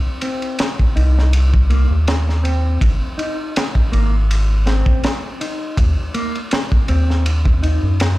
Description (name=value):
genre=trip hop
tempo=81 BPM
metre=4/4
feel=swing 54% on 16ths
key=C minor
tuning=A4 = 439 Hz
part: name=round analog bass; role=bass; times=0.0-8.2 s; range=Ab1 to Gb2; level=-14 LUFS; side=equal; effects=none
part: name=mellow electric guitar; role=arpeggios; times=0.2-8.0 s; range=Bb3 to Eb4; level=-26 LUFS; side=equal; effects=lush chorus, tape echo
part: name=crunchy breakbeat drum kit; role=drums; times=0.2-8.2 s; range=kick drum, ride cymbal, snare drum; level=-19 LUFS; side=equal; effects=none
room=small room reverb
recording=played on a big sound system in a bare room, large studio reverb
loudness=-15 LUFS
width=side -18 dB against mid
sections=0.0-8.2 A section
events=none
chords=0.0 Cm; 2.8 Ab; 5.8 Ebm